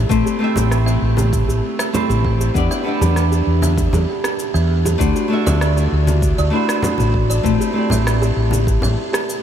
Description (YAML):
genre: sunset chillout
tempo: 98 BPM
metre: 4/4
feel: straight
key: A dorian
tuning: A4 = 440 Hz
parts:
  - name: flamenco guitar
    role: accompaniment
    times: 0.0-9.4 s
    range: A3 to E5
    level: -20 LUFS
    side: moving between left 4 dB and right 4 dB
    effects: auto-pan, tape echo
  - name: buzzing kalimba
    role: arpeggios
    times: 0.0-9.3 s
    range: F#4 to E5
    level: -24 LUFS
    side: right 3 dB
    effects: low-pass filter, tape echo
  - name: mellow fretless electric bass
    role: bass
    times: 0.0-8.9 s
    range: A1 to E2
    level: -17 LUFS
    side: equal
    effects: lush chorus
  - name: electronic kick drum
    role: drums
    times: 0.1-8.8 s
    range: none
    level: -22 LUFS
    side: equal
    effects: none
  - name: electronic shaker and rim click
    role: drums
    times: 0.1-9.4 s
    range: none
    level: -28 LUFS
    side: equal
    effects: none
  - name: congas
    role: percussion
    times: 0.6-8.9 s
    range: none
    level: -27 LUFS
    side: left 2 dB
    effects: none
room: moderate huge ambient reverb, RT60 8.0 s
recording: dreamy mix soaked in reverb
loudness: -15 LUFS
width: side -9 dB against mid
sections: 0.0-9.4 A section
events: none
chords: 0.0 Am7; 2.6 Em7; 5.0 D9; 7.5 Am7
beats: | 0.10 0.72 1.33 1.94 | 2.55 3.17 3.78 4.39 | 5.00 5.61 6.23 6.84 | 7.45 8.06 8.68 9.29